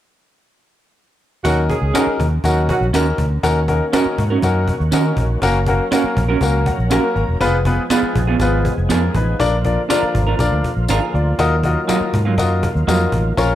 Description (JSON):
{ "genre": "uptempo 1960s-style soul", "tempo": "121 BPM", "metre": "4/4", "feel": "straight", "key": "Eb minor", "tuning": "A4 = 441 Hz", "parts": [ { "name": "mellow horn section", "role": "second line", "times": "1.4-2.9 s", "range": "Eb3 to Ab4", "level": "-22 LUFS", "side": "right 2 dB", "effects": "none" }, { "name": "bright upright piano", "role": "accompaniment", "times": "1.4-13.5 s", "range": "Bb3 to Bb5", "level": "-20 LUFS", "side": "left 3 dB", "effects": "none" }, { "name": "fingered electric bass", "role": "bass", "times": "1.4-13.6 s", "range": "Fb1 to Eb3", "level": "-18 LUFS", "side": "equal", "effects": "none" }, { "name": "cajon", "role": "drums", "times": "1.4-13.5 s", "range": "none", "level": "-25 LUFS", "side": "equal", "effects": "none" }, { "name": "tambourine", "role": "percussion", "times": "1.5-13.5 s", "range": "none", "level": "-30 LUFS", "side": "left 5 dB", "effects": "none" }, { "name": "electric guitar through a small old amp", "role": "stabs", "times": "1.9-13.0 s", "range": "Gb3 to Bb4", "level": "-21 LUFS", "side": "right 6 dB", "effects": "spring reverb" }, { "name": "overdriven tonewheel organ", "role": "sustained chords", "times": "3.4-13.6 s", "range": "Db3 to Bb4", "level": "-26 LUFS", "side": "equal", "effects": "chorus vibrato, slow rotary speaker" } ], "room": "light reverb, studio reverb", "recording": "dark, warm production", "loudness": "-15 LUFS", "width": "side -12 dB against mid", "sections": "0.0-1.4 A section; 1.4-3.4 B section; 3.4-13.6 C section", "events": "drum fill 0.5-1.4; upright piano fill 6.4-7.4", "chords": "0.0 N.C.; 1.4 Ebm7; 5.4 Gb; 7.4 Fdim; 9.4 Bb; 11.4 Ebmadd9", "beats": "0.45 0.95 | 1.45 1.94 2.44 2.94 | 3.43 3.93 4.43 4.92 | 5.42 5.92 6.42 6.91 | 7.41 7.91 8.40 8.90 | 9.40 9.89 10.39 10.89 | 11.38 11.88 12.38 12.88 | 13.37" }